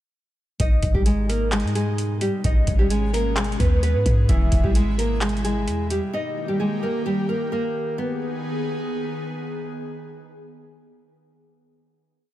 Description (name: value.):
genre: hip hop, trap.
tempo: 130 BPM.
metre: 4/4.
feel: half-time.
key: G# harmonic minor.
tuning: A4 = 440 Hz.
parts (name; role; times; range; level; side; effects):
nylon-string guitar; melody; 0.6-9.3 s; E3 to D#5; -25 LUFS; equal; ping-pong delay.
airy breathy pad; sustained chords; 0.6-11.1 s; B2 to G#4; -30 LUFS; equal; chorus.
clean 808-style bass; bass; 0.6-6.0 s; E1 to G#2; -23 LUFS; equal; none.
booming analog drum machine; drums; 0.6-6.0 s; handclaps, hi-hat, kick drum; -22 LUFS; equal; vintage 12-bit sampler grit.
room: digital ambience.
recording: none.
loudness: -20 LUFS.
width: side -14 dB against mid.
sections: 0.6-8.0 hook; 8.0-11.7 final chord.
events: none.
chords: 0.6 G#m; 4.3 E; 6.1 D#; 8.0 G#m.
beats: | 0.60 1.06 1.52 1.98 | 2.44 2.90 3.37 3.83 | 4.29 4.75 5.21 5.67 | 6.14 6.60 7.06 7.52 | 7.98 8.44 8.90 9.37 | 9.83 10.29 10.75.